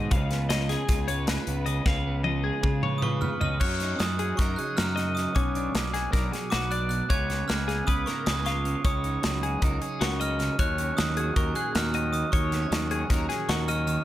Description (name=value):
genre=math rock and midwest emo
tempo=310 BPM (eighths)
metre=9/8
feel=straight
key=F# major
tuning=A4 = 439 Hz
part: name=twelve-string electric guitar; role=accompaniment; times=0.0-14.0 s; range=F#2 to C#5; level=-34 LUFS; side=right 6 dB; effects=none
part: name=twelve-string electric guitar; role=arpeggios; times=0.0-14.0 s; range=C#4 to E#5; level=-33 LUFS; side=left 8 dB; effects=digital delay
part: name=fuzz fingered electric bass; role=bass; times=0.0-14.0 s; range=B1 to C#3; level=-29 LUFS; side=equal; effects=overdrive
part: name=modern studio drum kit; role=drums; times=0.1-14.0 s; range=crash cymbal, hi-hat, kick drum, snare drum, toms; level=-28 LUFS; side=equal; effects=none
part: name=glockenspiel with brass mallets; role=melody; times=3.0-14.0 s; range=C#6 to G#6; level=-31 LUFS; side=right 3 dB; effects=none
room=little or no reverb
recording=none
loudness=-24 LUFS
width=side -13 dB against mid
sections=0.0-3.6 A section; 3.6-14.0 B section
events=drum fill 1.9-3.6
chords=0.1 C#7; 3.6 F#6; 5.4 Bmadd9; 7.1 C#7; 8.8 F#6/C#; 10.6 D#m7